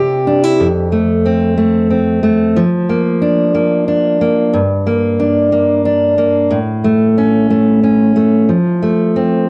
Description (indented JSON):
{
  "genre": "pop",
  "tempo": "61 BPM (dotted quarters)",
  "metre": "6/8",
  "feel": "straight",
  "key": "unclear",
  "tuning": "A4 = 440 Hz",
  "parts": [
    { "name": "fingerpicked steel-string acoustic guitar", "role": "solo", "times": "0.0-9.5 s", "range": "F2 to G4", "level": "-13 LUFS", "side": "equal", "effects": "none" }
  ],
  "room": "light reverb",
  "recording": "worn, warbling old tape, cassette tape, warbly pitch drift, lossy compression artefacts",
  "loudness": "-13 LUFS",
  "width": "mono",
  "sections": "0.6-9.5 A section",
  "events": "none",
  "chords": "0.0 C; 0.6 F; 2.6 Bb/F; 4.5 Gm; 6.5 A; 8.5 F",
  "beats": "| 0.60 1.59 | 2.57 3.55 | 4.54 5.52 | 6.51 7.50 | 8.49 9.49"
}